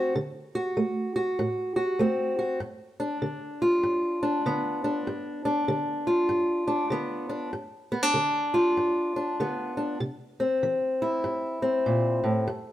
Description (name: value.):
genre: blues.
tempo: 98 BPM.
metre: 4/4.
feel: swing 62% on 8ths.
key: G mixolydian.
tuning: A4 = 439 Hz.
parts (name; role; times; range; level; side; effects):
fingerpicked old ladder-braced acoustic guitar; solo; 0.0-12.7 s; G2 to F#4; -24 LUFS; equal; none.
room: moderate stone room reverb, RT60 1.2 s.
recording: band playing live in one room.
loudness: -25 LUFS.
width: side -13 dB against mid.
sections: 0.0-7.5 A section; 7.5-12.7 B section.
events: none.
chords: 0.0 D7; 2.6 G7; 10.0 C7.